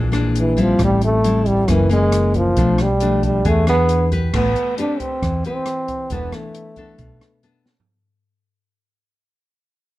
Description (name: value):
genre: bossa nova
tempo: 136 BPM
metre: 4/4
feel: straight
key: A minor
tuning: A4 = 439 Hz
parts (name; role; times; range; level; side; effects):
- nylon-string guitar; accompaniment; 0.0-7.8 s; F#2 to B4; -21 LUFS; left 3 dB; none
- hollow-body short-scale fingered electric bass; bass; 0.0-7.2 s; E1 to E2; -19 LUFS; right 1 dB; none
- open jazz drum kit; drums; 0.1-7.9 s; crash cymbal, hi-hat, kick drum, rim click, snare drum, toms; -26 LUFS; equal; none
- breathy trombone; melody; 0.4-7.7 s; E3 to D4; -20 LUFS; right 1 dB; none
room: light reverb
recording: dark, warm production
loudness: -15 LUFS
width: side -16 dB against mid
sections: 0.0-4.3 A section; 4.3-7.9 B section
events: fade-out 4.3-7.9; drum fill 7.7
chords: 0.0 Bb7#11; 0.8 Am7; 1.7 F#7; 2.6 Bm7b5; 3.5 E7; 4.3 Am9; 6.1 E7sus4